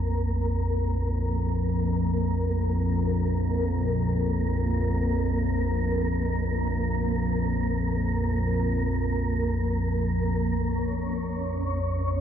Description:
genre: dark ambient drone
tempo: free time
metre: none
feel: none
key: Bb minor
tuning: A4 = 440 Hz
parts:
  - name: deep rumbling drone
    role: drone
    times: 0.0-12.2 s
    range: Bb1 to F2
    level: -25 LUFS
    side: equal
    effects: built-in reverb
  - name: wind-like tuned noise texture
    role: texture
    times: 0.0-12.2 s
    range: Bb3 to Db5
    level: -30 LUFS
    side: equal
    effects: built-in reverb, analog chorus
room: wet huge ambient reverb, RT60 7.1 s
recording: dreamy mix soaked in reverb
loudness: -24 LUFS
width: side -9 dB against mid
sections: 0.0-10.6 A section; 10.6-12.2 B section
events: none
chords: 0.0 Bb5; 10.6 Db69/Bb

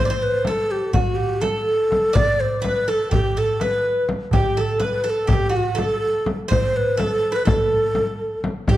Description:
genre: Turkish makam ensemble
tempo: 248 BPM (eighths)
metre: 9/8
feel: straight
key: unclear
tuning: A4 = 439 Hz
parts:
  - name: breathy mellow ney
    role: melody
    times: 0.0-8.8 s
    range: F#4-35c to D5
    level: -21 LUFS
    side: equal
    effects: none
  - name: Greek bouzouki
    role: second line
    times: 0.0-8.8 s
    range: F#4-30c to D5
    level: -26 LUFS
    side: right 3 dB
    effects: none
  - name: darbuka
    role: percussion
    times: 0.4-8.8 s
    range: none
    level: -26 LUFS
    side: right 3 dB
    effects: none
  - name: frame drum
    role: percussion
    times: 0.4-8.8 s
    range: none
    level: -24 LUFS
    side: left 2 dB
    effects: none
room: moderate recital hall reverb, RT60 1.6 s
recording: dark, warm production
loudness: -18 LUFS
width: side -14 dB against mid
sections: 0.0-8.8 A section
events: none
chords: none

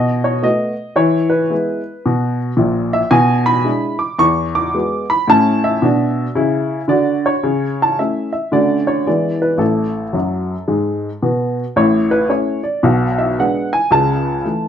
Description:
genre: jazz, stride piano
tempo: 111 BPM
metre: 4/4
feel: swing 64% on 8ths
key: E major, A major from 3.1 s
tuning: A4 = 439 Hz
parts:
  - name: warm upright piano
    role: solo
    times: 0.0-14.7 s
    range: A1 to D6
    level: -14 LUFS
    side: equal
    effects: none
room: moderate studio reverb, RT60 0.7 s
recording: none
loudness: -14 LUFS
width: side -8 dB against mid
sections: 0.0-11.8 A section; 11.8-14.7 B section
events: upright piano fill 10.1-11.8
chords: 0.0 B7; 1.0 E; 3.1 E7/B; 4.2 E9; 5.3 A; 7.4 A/C#; 8.5 Dmaj7; 9.1 E7; 9.6 F#madd9/A; 11.8 A; 12.8 G#dim/B; 13.9 A/C#

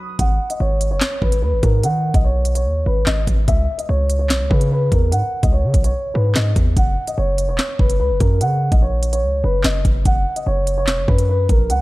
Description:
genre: hip hop, drill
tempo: 146 BPM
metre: 4/4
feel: half-time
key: G# minor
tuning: A4 = 440 Hz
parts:
  - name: dark concert grand piano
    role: melody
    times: 0.2-11.8 s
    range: A#4 to F#5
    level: -22 LUFS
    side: equal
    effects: low-pass filter
  - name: hard-hitting 808-style bass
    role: bass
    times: 0.2-11.8 s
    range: E1 to D#3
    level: -18 LUFS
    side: equal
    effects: none
  - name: drill drum kit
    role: drums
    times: 0.2-11.8 s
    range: handclaps, hi-hat, kick drum, snare drum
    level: -18 LUFS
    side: equal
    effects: none
room: light reverb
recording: dark, warm production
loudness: -15 LUFS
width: side -19 dB against mid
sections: 0.2-11.8 A section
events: break 0.0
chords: 0.2 G#m; 3.5 C#m; 6.8 F#5

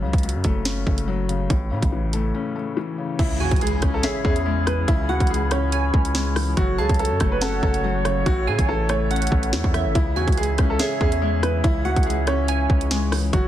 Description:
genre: hip hop, drill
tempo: 142 BPM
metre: 4/4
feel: half-time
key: C# minor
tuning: A4 = 440 Hz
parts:
  - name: felt-muted upright piano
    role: accompaniment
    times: 0.0-13.5 s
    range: F#2 to C#5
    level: -27 LUFS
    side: left 6 dB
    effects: none
  - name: hard-hitting 808-style bass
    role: bass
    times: 0.0-13.5 s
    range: F#1 to A2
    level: -24 LUFS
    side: equal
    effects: none
  - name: drill drum kit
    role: drums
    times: 0.1-13.4 s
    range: crash cymbal, hi-hat, kick drum, rim click, snare drum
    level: -22 LUFS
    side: equal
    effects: none
  - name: warm upright piano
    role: melody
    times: 3.2-13.5 s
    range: E4 to C#5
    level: -27 LUFS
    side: right 2 dB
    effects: tape echo
  - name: dark woodwind section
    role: sustained chords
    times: 3.2-13.5 s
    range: C#3 to E5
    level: -30 LUFS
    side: equal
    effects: none
  - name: impact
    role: sound effects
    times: 3.2-4.9 s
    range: none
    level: -32 LUFS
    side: right 1 dB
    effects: none
  - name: glassy wavetable pluck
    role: second line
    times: 3.4-12.9 s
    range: E5 to A5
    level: -30 LUFS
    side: right 5 dB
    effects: chorus, tape echo
room: little or no reverb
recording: dense, heavily limited modern master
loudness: -19 LUFS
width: side -12 dB against mid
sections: 0.0-3.2 A section; 3.2-13.5 B section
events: break 2.3-3.2; impact 3.2-4.9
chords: 0.0 F#m; 1.5 A; 3.2 C#m; 6.6 F#m; 8.3 A; 10.0 C#m

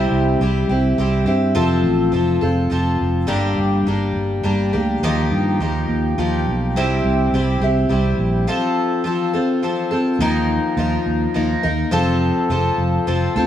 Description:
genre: folk rock and heartland rock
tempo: 104 BPM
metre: 3/4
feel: straight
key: unclear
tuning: A4 = 439 Hz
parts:
  - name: picked twelve-string acoustic guitar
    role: accompaniment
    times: 0.0-13.5 s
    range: G2 to Bb4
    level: -18 LUFS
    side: left 2 dB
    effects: none
  - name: fingered electric bass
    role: bass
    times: 0.0-13.5 s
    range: F1 to G2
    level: -20 LUFS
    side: right 2 dB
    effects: none
room: light reverb, small room ambience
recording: none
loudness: -16 LUFS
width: side -10 dB against mid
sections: 0.0-10.2 A section; 10.2-13.5 B section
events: none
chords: 0.0 C; 1.6 F; 3.3 Gm; 5.0 Ebadd9; 6.8 C; 8.5 F; 10.2 Ebsus2; 11.9 F

